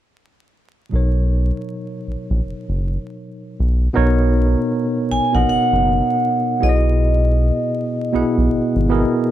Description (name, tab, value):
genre	R&B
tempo	79 BPM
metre	4/4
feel	swing 62% on 16ths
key	B major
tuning	A4 = 436 Hz
part	bright tine electric piano	accompaniment	0.9-9.3 s	B2 to F#5	-20 LUFS	right 1 dB	medium stereo tremolo
part	round analog bass	bass	0.9-9.0 s	F#1 to B1	-17 LUFS	equal	none
part	vibraphone with medium hard mallets	melody	5.1-9.3 s	D#5 to G#5	-20 LUFS	right 1 dB	slapback echo
room	little or no reverb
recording	dry, close 1970s-style studio recording, vinyl crackle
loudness	-16 LUFS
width	side -12 dB against mid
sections	0.9-3.9 A section; 3.9-9.3 B section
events	none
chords	0.9 Bmaj9; 3.6 N.C.; 3.9 Bmaj9; 6.6 Emaj9#11